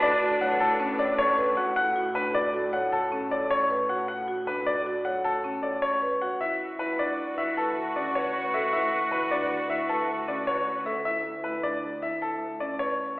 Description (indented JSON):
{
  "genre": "classical, minimalist pattern music",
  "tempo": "155 BPM",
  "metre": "6/4",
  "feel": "straight",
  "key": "D major from 6.4 s",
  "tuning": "A4 = 440 Hz",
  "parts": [
    { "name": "bright baby grand piano", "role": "melody", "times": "0.0-13.0 s", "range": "A4 to F#5", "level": "-26 LUFS", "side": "left 1 dB", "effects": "none" },
    { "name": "clear soprano saxophone", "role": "second line", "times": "0.0-1.5, 6.4-10.8 s", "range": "D4 to F#4", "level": "-31 LUFS", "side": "equal", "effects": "none" },
    { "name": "rich chamber violin section", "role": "sustained chords", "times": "0.0-1.5, 6.4-10.8 s", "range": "D4 to B4", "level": "-34 LUFS", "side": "equal", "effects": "none" },
    { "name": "marimba with medium mallets", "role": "arpeggios", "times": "0.0-13.0 s", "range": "C#4 to C#5", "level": "-32 LUFS", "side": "right 1 dB", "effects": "none" },
    { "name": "warm chamber double bass section", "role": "bass", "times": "0.0-13.2 s", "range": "D2 to A2", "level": "-39 LUFS", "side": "equal", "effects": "none" }
  ],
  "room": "wet recital hall reverb, RT60 1.6 s",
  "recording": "recorded in a church or concert hall, telephone sound",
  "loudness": "-24 LUFS",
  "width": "side -21 dB against mid",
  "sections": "0.0-6.4 A section; 6.4-13.2 B section",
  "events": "none",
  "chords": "0.0 Bm7/A; 6.4 D69"
}